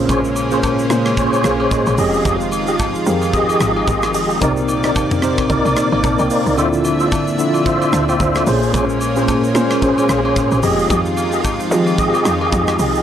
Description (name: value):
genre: amapiano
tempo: 111 BPM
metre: 4/4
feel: swing 58% on 16ths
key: unclear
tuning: A4 = 439 Hz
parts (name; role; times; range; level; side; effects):
- tine electric piano; accompaniment; 0.0-13.0 s; Bb2 to A5; -19 LUFS; equal; medium stereo tremolo
- lush unison pad; sustained chords; 0.0-13.0 s; Bb2 to E5; -21 LUFS; equal; chorus
- woody log drum bass; bass; 0.0-13.0 s; F1 to F3; -22 LUFS; equal; none
- mellow tonewheel organ; stabs; 0.1-13.0 s; Db4 to E5; -19 LUFS; equal; chorus vibrato, fast rotary speaker, analog delay
- tight metal drum kit; drums; 0.1-13.0 s; hi-hat, kick drum, rim click, shaker, toms; -23 LUFS; equal; none
- agogo bells and woodblock; percussion; 0.1-12.8 s; none; -27 LUFS; left 3 dB; none
room: light reverb, studio ambience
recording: dry, gritty hardware recording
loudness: -14 LUFS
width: side -9 dB against mid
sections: 0.0-13.0 A section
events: kick muted 6.6-7.1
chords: 0.0 Bbm9; 2.0 Fm9; 4.4 Cm9; 6.6 Dm9; 8.5 Bbm9; 10.6 Fm9